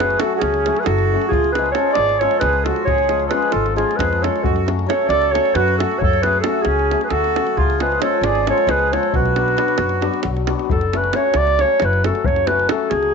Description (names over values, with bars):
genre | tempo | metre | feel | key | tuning
balkan folk, Balkan wedding band | 268 BPM (eighths) | 7/8 | straight | unclear | A4 = 440 Hz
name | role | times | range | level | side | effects
mellow clarinet | melody | 0.0-13.1 s | G#4 to D5 | -18 LUFS | equal | none
accordion | second line | 0.0-10.2 s | C#4 to A4 | -23 LUFS | right 10 dB | none
hammered dulcimer | accompaniment | 0.0-13.1 s | E#3 to F#4 | -24 LUFS | left 13 dB | none
upright bass | bass | 0.0-13.1 s | F#1 to F#2 | -23 LUFS | equal | tube saturation
davul | percussion | 0.0-13.1 s | none | -24 LUFS | right 2 dB | none
room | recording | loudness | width
light reverb | 1960s-style stereo with parts hard left and right, nothing above 7.9 kHz | -15 LUFS | side -5 dB against mid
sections
0.0-10.7 A section; 10.7-13.1 A section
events
none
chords
0.0 F#m; 1.3 C#; 4.5 F#m; 7.6 C#; 9.2 Bm; 10.7 F#m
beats
0.21 0.43 0.66 0.88 1.10 | 1.32 1.55 1.77 2.00 2.22 2.44 2.67 | 2.89 3.12 3.34 3.56 3.79 4.01 4.23 | 4.46 4.68 4.91 5.13 5.35 5.58 5.80 | 6.02 6.25 6.47 6.70 6.92 7.14 7.37 | 7.59 7.81 8.04 8.26 8.48 8.70 8.93 | 9.15 9.37 9.60 9.82 10.04 10.26 10.49 | 10.71 10.93 11.15 11.38 11.60 11.82 12.04 | 12.27 12.49 12.71 12.93